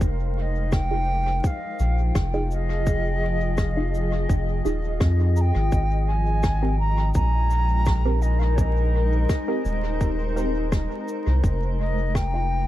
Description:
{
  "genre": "ambient dub",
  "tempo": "84 BPM",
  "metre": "4/4",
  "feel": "straight",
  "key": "unclear",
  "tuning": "A4 = 440 Hz",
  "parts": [
    { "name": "granular cloud pad", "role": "sustained chords", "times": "0.0-12.7 s", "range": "F3 to Bb5", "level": "-30 LUFS", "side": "left 2 dB", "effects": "built-in reverb" },
    { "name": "soft dub sub bass", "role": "bass", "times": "0.0-12.7 s", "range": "Eb1 to F2", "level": "-22 LUFS", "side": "equal", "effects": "none" },
    { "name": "cabasa and rim click", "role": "drums", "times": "0.0-12.3 s", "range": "none", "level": "-38 LUFS", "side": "left 1 dB", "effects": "dub echo" },
    { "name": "electronic kick drum", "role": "drums", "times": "0.0-12.3 s", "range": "none", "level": "-23 LUFS", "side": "equal", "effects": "none" },
    { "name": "bright wooden flute", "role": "melody", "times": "0.4-12.7 s", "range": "Db5 to Bb5", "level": "-30 LUFS", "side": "right 1 dB", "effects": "vintage 12-bit sampler grit, dub echo" },
    { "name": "filtered dub chord stab", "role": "stabs", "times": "0.9-12.5 s", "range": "C4 to Bb4", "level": "-32 LUFS", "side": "right 2 dB", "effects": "phaser, dub echo" }
  ],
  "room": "studio ambience",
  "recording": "echo-heavy mix, vinyl crackle",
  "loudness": "-20 LUFS",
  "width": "side -14 dB against mid",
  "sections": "0.0-12.7 A section",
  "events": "none",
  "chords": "0.0 Abmaj9; 11.4 Fm7"
}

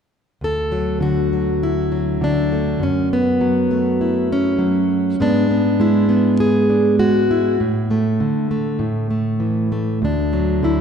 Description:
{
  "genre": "folk, solo fingerstyle acoustic guitar",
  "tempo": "100 BPM",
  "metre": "4/4",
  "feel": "straight",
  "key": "D major",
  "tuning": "A4 = 440 Hz",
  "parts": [
    { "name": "fingerpicked plugged-in steel-string acoustic guitar", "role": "solo", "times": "0.4-10.8 s", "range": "D2 to A4", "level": "-16 LUFS", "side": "equal", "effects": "none" }
  ],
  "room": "wet concert hall reverb, RT60 1.9 s",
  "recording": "recorded in a church or concert hall",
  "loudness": "-16 LUFS",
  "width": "side -7 dB against mid",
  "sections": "0.4-10.8 A section",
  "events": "none",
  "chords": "0.4 D; 2.8 F#m7; 5.2 E7/G#; 7.6 Asus4; 8.8 A5; 10.0 D"
}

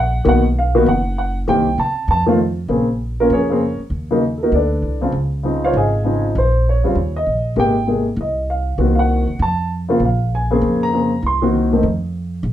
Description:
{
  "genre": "jazz piano trio",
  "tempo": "197 BPM",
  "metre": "4/4",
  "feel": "swing 62% on 8ths",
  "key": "Bb minor",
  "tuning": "A4 = 442 Hz",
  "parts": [
    { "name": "warm baby grand piano", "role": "melody", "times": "0.0-11.8 s", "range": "C3 to C6", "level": "-16 LUFS", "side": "equal", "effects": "none" },
    { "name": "upright bass", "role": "bass", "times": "0.0-12.5 s", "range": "F#1 to C3", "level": "-20 LUFS", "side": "equal", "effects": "none" }
  ],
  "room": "wet small room reverb, RT60 0.5 s",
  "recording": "heard from further back in the room",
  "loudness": "-15 LUFS",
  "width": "side -12 dB against mid",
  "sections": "0.0-2.7 A section; 2.7-12.5 B section",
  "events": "none",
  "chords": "0.2 Bmaj7; 1.5 Cm7; 2.1 F; 2.7 Bbm9; 3.9 Ebm; 4.5 D5; 5.1 Dbmaj9; 6.3 Bbmadd9; 7.0 Eb5; 7.6 Abmaj9; 8.8 Cm7b5; 9.4 F; 10.0 Bbm9; 11.2 Cm7b5; 11.8 N.C."
}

